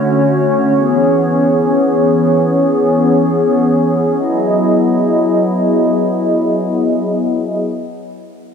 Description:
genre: dream pop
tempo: free time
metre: none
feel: none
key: E major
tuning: A4 = 439 Hz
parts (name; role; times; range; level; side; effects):
- hollow soft pad; sustained chords; 0.0-7.6 s; D3 to D#5; -12 LUFS; equal; chorus, low-pass filter
room: wet huge ambient reverb, RT60 3.9 s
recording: dark, warm production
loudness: -11 LUFS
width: side -6 dB against mid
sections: 0.0-7.6 A section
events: filter sweep on analog synth pad 0.0-7.6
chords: 0.0 Dmaj7; 0.8 E6; 4.2 Emaj9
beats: free time

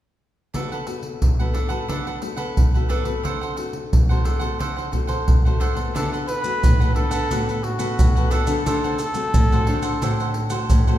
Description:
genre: samba and choro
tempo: 89 BPM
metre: 4/4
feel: straight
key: D major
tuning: A4 = 440 Hz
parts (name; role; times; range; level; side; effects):
- cavaquinho; accompaniment; 0.5-11.0 s; D4 to F#5; -29 LUFS; right 4 dB; none
- nylon-string guitar; accompaniment; 0.5-11.0 s; A2 to F#4; -30 LUFS; left 5 dB; none
- surdo, pandeiro and maracas; percussion; 0.5-11.0 s; none; -20 LUFS; equal; none
- breathy trumpet; melody; 6.0-11.0 s; F#4 to B4; -26 LUFS; left 1 dB; none
- nylon-string guitar; bass; 6.0-11.0 s; A2 to D3; -24 LUFS; equal; none
room: wet recital hall reverb, RT60 1.6 s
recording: recorded in a church or concert hall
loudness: -19 LUFS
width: side -13 dB against mid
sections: 0.5-6.0 A section; 6.0-11.0 B section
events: none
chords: 0.5 D6; 8.7 D7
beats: | 0.54 1.22 1.90 2.57 | 3.25 3.93 4.61 5.28 | 5.96 6.63 7.31 7.99 | 8.67 9.34 10.02 10.70

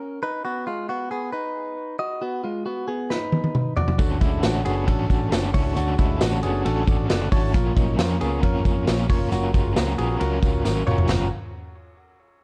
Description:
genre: jangly indie pop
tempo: 135 BPM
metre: 4/4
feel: straight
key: F# major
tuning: A4 = 442 Hz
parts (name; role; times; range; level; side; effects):
- direct-recorded clean electric guitar; arpeggios; 0.0-11.3 s; F#3 to D#5; -31 LUFS; equal; tape echo
- vintage drum kit; drums; 3.1-11.2 s; hi-hat, kick drum, ride cymbal, snare drum, splash cymbal, toms; -25 LUFS; equal; none
- combo organ; accompaniment; 4.0-11.3 s; C#4 to A5; -32 LUFS; equal; none
- crunchy overdriven guitar; accompaniment; 4.0-11.3 s; A#2 to A#4; -31 LUFS; equal; tremolo
- vintage muted fingered electric bass; bass; 4.0-11.3 s; E#1 to E#2; -28 LUFS; equal; none
- tambourine; percussion; 4.0-11.3 s; none; -46 LUFS; equal; none
room: light reverb, small room ambience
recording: dark, warm production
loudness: -23 LUFS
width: mono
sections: 0.0-11.1 A section; 11.1-12.4 B section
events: drum fill 3.1-4.0, 10.6-11.1; transistor combo organ fill 6.7-7.5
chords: 0.2 B6; 3.8 Dmaj7; 7.5 A#m; 9.3 F#maj7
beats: 0.01 | 0.45 0.89 1.33 1.78 | 2.22 2.66 3.10 3.55 | 3.99 4.43 4.88 5.32 | 5.77 6.21 6.65 7.10 | 7.54 7.99 8.43 8.87 | 9.32 9.76 10.21 10.65 | 11.09

